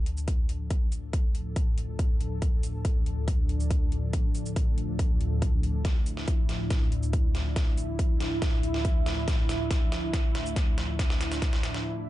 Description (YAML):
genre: heavy wobble dubstep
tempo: 140 BPM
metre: 4/4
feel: half-time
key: D minor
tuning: A4 = 440 Hz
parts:
  - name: lush unison pad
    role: sustained chords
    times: 0.0-12.1 s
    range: D2 to A4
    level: -30 LUFS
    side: equal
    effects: chorus, sidechain pumping
  - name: dubstep drum kit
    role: drums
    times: 0.1-11.8 s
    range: hi-hat, shaker, snare drum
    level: -37 LUFS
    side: equal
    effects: overdrive, high-pass filter on hats, high-pass filter on snare, high-pass filter on perc, high-pass filter on room
  - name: electronic kick drum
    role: drums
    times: 0.3-11.5 s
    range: none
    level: -26 LUFS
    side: equal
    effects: overdrive
room: little or no reverb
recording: dark, warm production, nothing above 10.9 kHz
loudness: -25 LUFS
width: side -15 dB against mid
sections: 0.0-12.1 A section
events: build-up 0.0-12.1; filter sweep on analog synth pad 0.0-12.1; drum fill 5.8-11.8; break 11.8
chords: 0.0 Dm